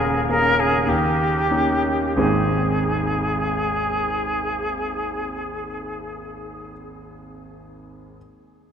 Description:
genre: classical, romantic duo for flute and grand piano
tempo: 44-56 BPM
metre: 3/4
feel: rubato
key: Ab major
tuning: A4 = 440 Hz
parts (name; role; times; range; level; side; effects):
- silver concert flute; melody; 0.0-6.7 s; G4 to Bb4; -22 LUFS; equal; none
- warm concert grand piano; accompaniment; 0.0-8.2 s; Eb1 to Ab4; -24 LUFS; equal; none
room: wet cathedral reverb, RT60 5.6 s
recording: in a vast, echoing space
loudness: -19 LUFS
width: side -8 dB against mid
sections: 0.0-2.2 A section; 2.2-6.0 B section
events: slowing down 0.0-2.2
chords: 0.0 Eb7sus4; 0.9 Eb7; 2.2 Ab

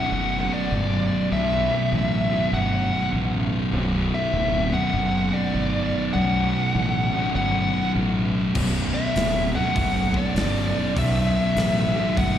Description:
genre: stoner and doom metal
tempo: 100 BPM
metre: 4/4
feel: swing 63% on 8ths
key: B minor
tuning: A4 = 443 Hz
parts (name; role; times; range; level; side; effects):
- fuzz lead guitar; melody; 0.0-12.4 s; D5 to F#5; -26 LUFS; left 1 dB; distortion, slapback echo
- thick fuzz guitar; riff; 0.0-12.4 s; B1 to B2; -26 LUFS; left 6 dB; distortion
- thick fuzz guitar; riff; 0.0-12.4 s; B1 to B2; -27 LUFS; right 8 dB; distortion, slapback echo
- fuzz fingered electric bass; bass; 0.1-12.4 s; B0 to B1; -26 LUFS; equal; overdrive
- big rock drum kit; drums; 8.6-12.3 s; crash cymbal, hi-hat, kick drum, snare drum; -29 LUFS; equal; none
room: studio ambience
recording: live gig heard through the venue's PA, recital hall reverb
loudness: -20 LUFS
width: side -10 dB against mid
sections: 0.0-12.4 A section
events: none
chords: 0.0 B5

